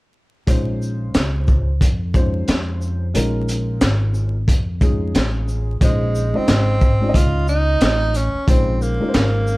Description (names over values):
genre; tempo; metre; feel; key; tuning
hip hop, jazz-hop; 90 BPM; 4/4; swing 59% on 16ths; Bb minor; A4 = 439 Hz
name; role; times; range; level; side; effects
dark upright piano; accompaniment; 0.5-9.6 s; Db3 to Eb5; -25 LUFS; left 1 dB; none
upright bass; bass; 0.5-9.6 s; Ab1 to F2; -20 LUFS; equal; none
crunchy breakbeat drum kit; drums; 0.5-9.6 s; hi-hat, kick drum, shaker, snare drum; -18 LUFS; equal; none
breathy tenor saxophone; melody; 5.8-9.6 s; Ab3 to F4; -22 LUFS; right 1 dB; none
room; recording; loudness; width
light reverb; dark, warm production, vinyl crackle; -16 LUFS; side -21 dB against mid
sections
0.5-5.8 A section; 5.8-9.6 B section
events
none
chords
0.5 Bbm11